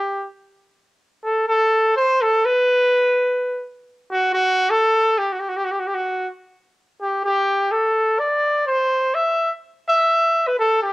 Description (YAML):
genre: mexican folk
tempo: 125 BPM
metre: 3/4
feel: straight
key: G major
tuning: A4 = 441 Hz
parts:
  - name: clear trumpet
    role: solo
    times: 0.0-10.9 s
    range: F#4 to E5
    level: -17 LUFS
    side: equal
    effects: none
room: moderate spring reverb, RT60 1.1 s, small room ambience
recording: home recording on cassette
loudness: -17 LUFS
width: side -19 dB against mid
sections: 0.0-10.9 A section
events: none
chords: none